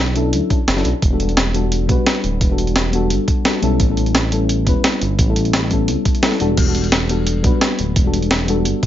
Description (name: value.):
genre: liquid drum and bass.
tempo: 173 BPM.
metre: 4/4.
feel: straight.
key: E dorian.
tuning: A4 = 440 Hz.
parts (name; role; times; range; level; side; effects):
mellow FM electric piano; accompaniment; 0.0-8.9 s; F#3 to B4; -20 LUFS; left 2 dB; chorus, tape echo.
smooth synth bass; bass; 0.0-8.7 s; D1 to D2; -20 LUFS; equal; none.
breakbeat sampler-style drum kit; drums; 0.2-8.9 s; crash cymbal, hi-hat, snare drum; -19 LUFS; right 1 dB; none.
electronic kick drum; drums; 0.5-8.9 s; none; -18 LUFS; equal; none.
room: light reverb, digital ambience.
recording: nothing above 7.5 kHz.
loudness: -14 LUFS.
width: side -12 dB against mid.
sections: 0.0-8.9 A section.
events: none.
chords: 0.0 Bm11; 1.0 Em11; 3.8 A9; 6.6 Em11.